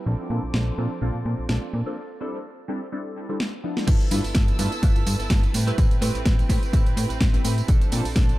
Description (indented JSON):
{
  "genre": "filtered disco house",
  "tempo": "126 BPM",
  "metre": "4/4",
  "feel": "swing 55% on 16ths",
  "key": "G mixolydian",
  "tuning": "A4 = 441 Hz",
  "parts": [
    { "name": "rich chamber violin section", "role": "sustained chords", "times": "0.0-8.4 s", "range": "C4 to E6", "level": "-37 LUFS", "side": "equal", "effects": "sidechain pumping, low-pass filter" },
    { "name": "direct-recorded clean electric guitar", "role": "riff", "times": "0.0-8.4 s", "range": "F3 to B4", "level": "-35 LUFS", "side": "right 5 dB", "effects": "vintage 12-bit sampler grit, sidechain pumping, low-pass filter, dub echo" },
    { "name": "slap-like FM bass", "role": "bass", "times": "0.1-8.3 s", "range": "G1 to Bb2", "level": "-25 LUFS", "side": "equal", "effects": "tube saturation, sidechain pumping, low-pass filter" },
    { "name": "funky polysynth comp", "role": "accompaniment", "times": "0.3-8.0 s", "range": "F3 to B4", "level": "-32 LUFS", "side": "equal", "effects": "chorus, phaser, vintage 12-bit sampler grit, sidechain pumping, low-pass filter, dub echo" },
    { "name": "house drum kit", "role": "drums", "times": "0.5-8.4 s", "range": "crash cymbal, hi-hat, snare drum, tambourine", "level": "-29 LUFS", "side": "equal", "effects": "sidechain pumping on hats, sidechain pumping on cymbals, sidechain pumping on perc" },
    { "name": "electronic kick drum", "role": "drums", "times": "3.9-8.3 s", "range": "none", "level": "-20 LUFS", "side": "equal", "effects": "none" }
  ],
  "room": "little or no reverb",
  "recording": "echo-heavy mix",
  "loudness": "-20 LUFS",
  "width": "side -17 dB against mid",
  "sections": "0.0-3.9 A section; 3.9-8.4 B section",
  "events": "filter sweep 0.0-3.9; break 2.0-3.9; drum fill 3.4-3.9; drop 3.9-8.4",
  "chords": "0.1 Bbmaj9; 2.0 C6; 3.9 G13; 5.5 Am9; 7.7 Bbmaj9",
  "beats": "| 0.07 0.54 1.02 1.50 | 1.97 2.45 2.92 3.40 | 3.88 4.35 4.83 5.30 | 5.78 6.26 6.73 7.21 | 7.69 8.16"
}